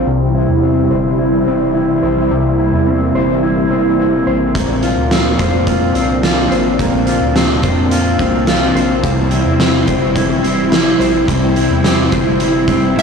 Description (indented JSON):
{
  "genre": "dream pop",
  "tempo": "107 BPM",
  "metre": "4/4",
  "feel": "straight",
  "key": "C mixolydian",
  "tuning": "A4 = 438 Hz",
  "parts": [
    { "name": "string machine, cellos", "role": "sustained chords", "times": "0.0-13.0 s", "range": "G3 to E4", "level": "-18 LUFS", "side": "equal", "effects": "ensemble chorus, low-pass filter" },
    { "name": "mellow electric guitar", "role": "arpeggios", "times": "0.0-13.0 s", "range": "Bb2 to C5", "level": "-15 LUFS", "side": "left 1 dB", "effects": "analog chorus, low-pass filter, digital delay" },
    { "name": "round analog bass", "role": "bass", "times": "0.0-13.0 s", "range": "E1 to F2", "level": "-21 LUFS", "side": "equal", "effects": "transformer saturation" },
    { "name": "oversized low-tuned drum kit", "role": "drums", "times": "4.6-13.0 s", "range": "hi-hat, kick drum, snare drum, toms", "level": "-17 LUFS", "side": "right 1 dB", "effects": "none" },
    { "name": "shimmering bell with halo", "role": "melody", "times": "13.0 s", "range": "E5", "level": "-11 LUFS", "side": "equal", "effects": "ensemble chorus, phaser" }
  ],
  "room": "moderate huge ambient reverb, RT60 7.7 s",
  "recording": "blown-out, overdriven recording, overdrive, studio ambience",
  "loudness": "-11 LUFS",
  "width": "side -6 dB against mid",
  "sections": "0.0-13.0 A section",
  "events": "filter sweep 0.0-13.0",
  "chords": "0.1 C; 4.5 Bbadd9; 9.0 C"
}